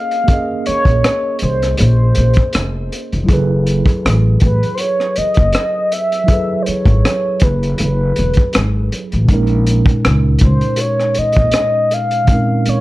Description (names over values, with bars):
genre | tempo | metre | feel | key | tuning
R&B, neo-soul | 80 BPM | 4/4 | swing 53% on 16ths | unclear | A4 = 441 Hz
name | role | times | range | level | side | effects
mellow horn-like synth lead | melody | 0.0-12.8 s | Cb5 to F5 | -18 LUFS | equal | chorus
mellow tine electric piano | accompaniment | 0.0-12.8 s | Bb2 to Eb5 | -20 LUFS | right 2 dB | slow stereo tremolo
crunchy breakbeat drum kit | drums | 0.1-12.8 s | hi-hat, kick drum, rim click | -15 LUFS | equal | none
upright bass | bass | 0.7-12.7 s | Fb1 to Db2 | -15 LUFS | equal | none
room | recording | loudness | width
light reverb | dark, warm production | -12 LUFS | side -18 dB against mid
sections
0.0-12.8 A section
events
none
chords
0.0 Bbm11; 3.3 Gbm11; 9.3 Bbm11